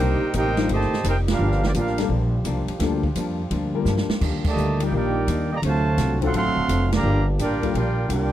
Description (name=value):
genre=jazz, big band swing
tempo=170 BPM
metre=4/4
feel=swing 66% on 8ths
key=G minor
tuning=A4 = 440 Hz
part: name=warm trumpet section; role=melody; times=0.0-2.1, 4.5-8.3 s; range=Bb3 to C6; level=-26 LUFS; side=right 2 dB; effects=none
part: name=clear trombone section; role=second line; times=0.0-2.1, 4.5-8.3 s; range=Bb2 to G4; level=-27 LUFS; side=right 4 dB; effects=none
part: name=hollow-body jazz guitar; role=accompaniment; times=0.0-8.3 s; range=G2 to Bb4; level=-30 LUFS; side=left 4 dB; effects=none
part: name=warm upright piano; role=accompaniment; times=0.0-7.7 s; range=F#3 to D5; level=-27 LUFS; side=left 10 dB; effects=none
part: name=mellow trombone section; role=sustained chords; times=0.0-8.3 s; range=Bb2 to G4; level=-34 LUFS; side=right 1 dB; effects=none
part: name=upright bass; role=bass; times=0.0-8.3 s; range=D1 to G2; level=-23 LUFS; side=equal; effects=none
part: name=open jazz drum kit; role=drums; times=0.3-8.2 s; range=crash cymbal, hi-hat, kick drum, ride cymbal, snare drum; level=-29 LUFS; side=right 2 dB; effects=none
room=little or no reverb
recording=dry, close 1970s-style studio recording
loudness=-20 LUFS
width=side -12 dB against mid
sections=0.0-8.3 A section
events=band accent 1.2, 4.4, 6.9; drum fill 3.9-4.2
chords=0.0 Cm7; 1.4 Gm7; 4.2 Ebmaj7; 5.6 D7#9; 7.0 Gm7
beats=0.34 0.69 1.04 | 1.40 1.75 2.10 2.45 | 2.81 3.16 3.51 3.86 | 4.22 4.57 4.92 5.28 | 5.63 5.98 6.33 6.69 | 7.04 7.39 7.74 8.10